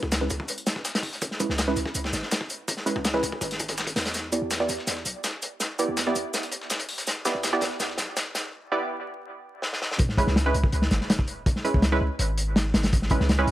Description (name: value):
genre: drum and bass, jungle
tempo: 164 BPM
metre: 4/4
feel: straight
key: C# minor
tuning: A4 = 438 Hz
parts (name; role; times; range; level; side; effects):
- filtered dub chord stab; stabs; 0.0-13.5 s; G#3 to D5; -28 LUFS; right 2 dB; chorus, dub echo
- long sustained 808-style bass; bass; 0.0-8.1, 10.3-13.5 s; G#1 to E2; -28 LUFS; equal; none
- crunchy breakbeat drum kit; drums; 0.0-13.5 s; hi-hat, kick drum, snare drum; -26 LUFS; equal; high-pass filter on kick, high-pass filter on hats, high-pass filter on snare, high-pass filter on room
- breakbeat sampler-style drum kit; drums; 0.1-8.4 s; hi-hat, shaker, snare drum; -33 LUFS; equal; high-pass filter on perc, high-pass filter on snare, high-pass filter on hats
- sub drop; sound effects; 10.0-11.5 s; none; -37 LUFS; equal; none
room: light reverb, studio reverb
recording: vinyl crackle, high-pass filter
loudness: -24 LUFS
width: side -15 dB against mid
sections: 0.0-10.0 A section; 10.0-13.5 B section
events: build-up 0.0-10.0; filter sweep on synth stab 0.0-10.0; drum fill 4.1-8.5, 9.6-10.0; break 8.5-10.0; drop 10.0-13.5; impact 10.0-11.5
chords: 0.0 C#m7; 4.1 Em7; 10.0 C#m7